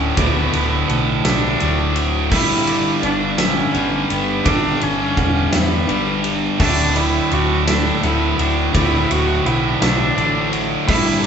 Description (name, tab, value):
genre	post-rock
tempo	56 BPM (dotted quarters)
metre	6/8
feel	straight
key	D major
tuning	A4 = 443 Hz
part	warm cello	melody	0.0-11.3 s	A3 to F#4	-22 LUFS	right 1 dB	none
part	pedal steel guitar	sustained chords	0.0-11.3 s	G3 to B5	-34 LUFS	left 2 dB	none
part	twangy electric guitar	arpeggios	0.0-11.3 s	D5 to D6	-28 LUFS	right 5 dB	spring reverb
part	twelve-string electric guitar	arpeggios	0.0-11.3 s	D2 to G4	-27 LUFS	left 5 dB	none
part	cranked stack guitar	riff	0.0-11.3 s	D2 to G3	-24 LUFS	left 6 dB	overdrive
part	tight distorted guitar	riff	0.0-11.3 s	D2 to G3	-21 LUFS	right 7 dB	distortion
part	hollow-body short-scale picked electric bass	bass	0.0-11.3 s	D1 to E2	-23 LUFS	equal	none
part	huge arena drum kit	drums	0.2-11.3 s	crash cymbal, kick drum, ride cymbal, snare drum	-22 LUFS	equal	none
room	wet large studio reverb, RT60 1.3 s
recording	band playing live in one room, nothing above 7.9 kHz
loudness	-15 LUFS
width	side -7 dB against mid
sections	0.0-11.3 A section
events	none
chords	0.0 D; 2.3 G; 6.6 D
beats	| 0.17 1.24 | 2.32 3.39 | 4.46 5.53 | 6.60 7.67 | 8.74 9.81 | 10.88